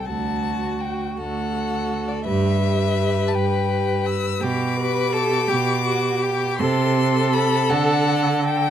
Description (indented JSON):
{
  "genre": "classical, slow romantic movement for string quartet",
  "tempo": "55 BPM (dotted quarters)",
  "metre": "6/8",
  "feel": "rubato",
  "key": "G major",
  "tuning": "A4 = 440 Hz",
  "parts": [
    { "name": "warm violin", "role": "melody", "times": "0.0-8.7 s", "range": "D5 to E6", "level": "-26 LUFS", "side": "left 8 dB", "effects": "none" },
    { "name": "rich violin", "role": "second line", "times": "0.0-8.7 s", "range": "F#4 to B4", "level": "-26 LUFS", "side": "left 4 dB", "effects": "none" },
    { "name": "clear viola", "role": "accompaniment", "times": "0.0-8.7 s", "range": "F#4 to A4", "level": "-27 LUFS", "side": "right 2 dB", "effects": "none" },
    { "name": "rich cello", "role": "bass", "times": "0.1-8.7 s", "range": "D2 to D3", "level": "-22 LUFS", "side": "right 4 dB", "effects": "none" }
  ],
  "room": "light reverb",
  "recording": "none",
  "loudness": "-19 LUFS",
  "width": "side -10 dB against mid",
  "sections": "0.0-8.7 A section",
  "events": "none",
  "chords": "0.1 D; 2.3 G; 4.4 G/B; 6.6 Am/C; 7.7 D",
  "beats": "| 0.07 1.18 | 2.26 3.34 | 4.41 5.48 | 6.59 7.70"
}